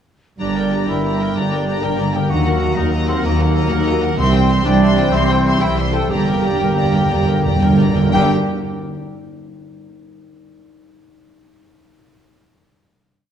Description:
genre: cinematic, heroic adventure film score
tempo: 116-128 BPM (dotted quarters)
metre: 12/8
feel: straight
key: unclear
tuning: A4 = 439 Hz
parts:
  - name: warm symphonic violin section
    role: melody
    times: 0.4-8.3 s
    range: Gb5 to C6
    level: -26 LUFS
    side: left 6 dB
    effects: none
  - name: clear symphonic violin section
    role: second line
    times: 0.4-8.3 s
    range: Bb4 to G5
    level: -31 LUFS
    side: left 4 dB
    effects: none
  - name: dark cor anglais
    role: second line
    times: 0.4-8.3 s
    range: Bb3 to Bb4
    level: -28 LUFS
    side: right 1 dB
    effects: none
  - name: mellow silver concert flute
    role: second line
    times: 0.4-8.3 s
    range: Bb4 to Bb5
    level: -26 LUFS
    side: left 2 dB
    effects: none
  - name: rich symphonic viola section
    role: accompaniment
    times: 0.4-8.3 s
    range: Gb4 to C5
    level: -28 LUFS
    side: right 3 dB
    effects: none
  - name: bright trombone section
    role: sustained chords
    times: 0.4-8.3 s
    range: D3 to Bb3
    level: -27 LUFS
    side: right 3 dB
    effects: none
  - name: mellow French horn section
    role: sustained chords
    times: 0.4-8.3 s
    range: Bb3 to Bb4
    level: -26 LUFS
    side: left 2 dB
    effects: none
  - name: concert harp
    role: arpeggios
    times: 0.4-10.2 s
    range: G2 to Bb5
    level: -27 LUFS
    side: left 9 dB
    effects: none
  - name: mellow tuba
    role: bass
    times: 0.4-8.3 s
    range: G1 to Eb2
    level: -22 LUFS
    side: right 3 dB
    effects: none
  - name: rich symphonic cello section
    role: bass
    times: 0.4-8.3 s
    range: C2 to G2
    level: -22 LUFS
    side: right 2 dB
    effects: none
  - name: rich symphonic double bass section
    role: bass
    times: 0.4-8.3 s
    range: G1 to Eb2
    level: -22 LUFS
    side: right 2 dB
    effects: none
  - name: timpani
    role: percussion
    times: 6.1-8.3 s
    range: G2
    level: -20 LUFS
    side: equal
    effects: none
room: moderate scoring stage reverb, RT60 1.7 s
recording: none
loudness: -14 LUFS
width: side -8 dB against mid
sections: 0.4-8.1 theme; 8.1-10.2 final chord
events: slowing down 4.8-8.1; timpani fill 6.1-8.1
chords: 0.4 Gm; 2.3 Ebm; 4.2 C; 6.1 Gm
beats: | 0.40 0.88 1.36 1.83 | 2.30 2.77 3.25 3.72 | 4.19 4.66 5.13 5.61 | 6.10 6.60 7.11 7.62 | 8.13 8.64 9.14 9.65

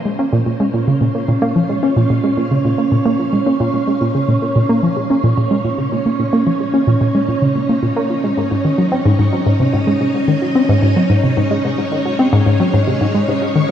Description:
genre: ambient, sequencer-driven space music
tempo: 110 BPM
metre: 4/4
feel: straight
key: Bb minor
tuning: A4 = 439 Hz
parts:
  - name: string machine, full ensemble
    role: sustained chords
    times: 0.0-13.7 s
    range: Ab3 to F5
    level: -25 LUFS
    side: equal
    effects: ensemble chorus
  - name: wind-like tuned noise texture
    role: texture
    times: 0.1-13.7 s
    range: Db4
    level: -19 LUFS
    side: right 2 dB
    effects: built-in reverb
  - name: analog pluck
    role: riff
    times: 0.1-13.6 s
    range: Ab2 to Db4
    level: -15 LUFS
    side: equal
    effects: chorus, tape echo
room: wet plate reverb, RT60 2.8 s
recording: dark, warm production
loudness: -13 LUFS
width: side -10 dB against mid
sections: 0.0-13.7 A section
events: fade-in on string machine 0.0-13.7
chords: 0.0 Bbmadd9; 8.4 Absus4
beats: 0.19 0.74 1.28 | 1.83 2.37 2.92 3.46 | 4.01 4.56 5.10 5.65 | 6.19 6.74 7.28 7.83 | 8.37 8.92 9.46 10.01 | 10.56 11.10 11.65 12.19 | 12.74 13.28

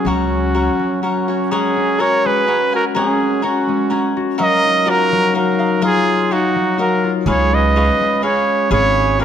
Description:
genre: mexican folk, mariachi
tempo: 125 BPM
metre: 3/4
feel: swing 53% on 8ths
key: F# major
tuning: A4 = 440 Hz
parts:
  - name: warm trumpet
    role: melody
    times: 0.0-9.2 s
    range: F#4 to D#5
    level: -17 LUFS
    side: right 1 dB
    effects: none
  - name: mellow trumpet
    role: second line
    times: 0.0-9.2 s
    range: C#4 to B4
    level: -22 LUFS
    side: right 6 dB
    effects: none
  - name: cavaquinho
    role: accompaniment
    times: 0.0-9.2 s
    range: F#4 to G#5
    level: -22 LUFS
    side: left 3 dB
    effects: none
  - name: concert harp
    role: arpeggios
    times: 0.0-9.2 s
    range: F#3 to F#4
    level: -20 LUFS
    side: left 5 dB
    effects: none
  - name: upright bass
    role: bass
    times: 0.0-0.7, 7.3-9.2 s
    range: G#1 to C#2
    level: -18 LUFS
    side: right 1 dB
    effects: none
room: moderate recital hall reverb, RT60 1.5 s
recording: none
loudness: -14 LUFS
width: side -9 dB against mid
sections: 0.0-1.5 A section; 1.5-9.2 A section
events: none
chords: 0.0 F#; 1.5 F#add9; 4.4 D#madd9; 7.3 C#7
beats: | 0.06 0.54 1.03 | 1.51 2.00 2.48 | 2.96 3.44 3.92 | 4.40 4.87 5.35 | 5.82 6.30 6.79 | 7.27 7.75 8.23 | 8.71 9.19

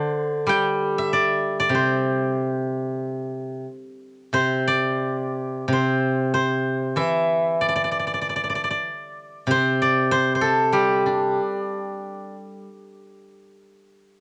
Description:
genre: chinese traditional, Chinese solo plucked strings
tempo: 93 BPM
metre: 4/4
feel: uneven beats, rubato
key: unclear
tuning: A4 = 442 Hz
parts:
  - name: steel-string zither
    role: solo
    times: 0.0-14.0 s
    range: C3 to G5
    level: -23 LUFS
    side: equal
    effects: cassette tape
room: light reverb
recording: home recording on cassette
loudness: -22 LUFS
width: mono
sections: 0.0-14.2 A section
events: none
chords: none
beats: 0.48 1.10 | 1.72 2.34 2.98 3.65 | 4.34 5.03 5.70 6.34 | 6.98 7.62 8.25 8.88 | 9.49 10.11 10.73 11.37 | 12.01 12.66 13.34

